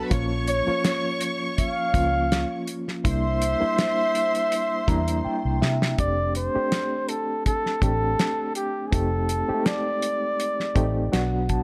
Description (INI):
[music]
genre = lush 1970s-style soul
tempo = 82 BPM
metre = 4/4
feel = swing 54% on 16ths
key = F major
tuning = A4 = 440 Hz
[part]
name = rich studio string section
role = second line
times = 0.0-5.6 s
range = B4 to Db6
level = -34 LUFS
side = equal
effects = none
[part]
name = reed electric piano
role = accompaniment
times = 0.0-11.6 s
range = F3 to Bb5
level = -31 LUFS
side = equal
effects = overdrive, fast tremolo
[part]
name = vintage muted fingered electric bass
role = bass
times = 0.1-11.6 s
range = F1 to C3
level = -29 LUFS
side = equal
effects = none
[part]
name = damped 70s drum kit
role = drums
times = 0.1-11.6 s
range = hi-hat, kick drum, snare drum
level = -28 LUFS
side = equal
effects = none
[part]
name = warm flugelhorn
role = melody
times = 0.5-11.5 s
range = G4 to F5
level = -28 LUFS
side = equal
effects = none
[sound]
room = light reverb, small room ambience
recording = none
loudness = -24 LUFS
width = mono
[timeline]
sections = 0.0-6.0 A section; 6.0-11.6 A section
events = reed electric piano fill 4.5-6.0, 10.8-11.6; drum fill 5.3-6.0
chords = 0.1 Bbm; 3.0 C9; 6.0 F6; 8.9 F7; 11.1 Bm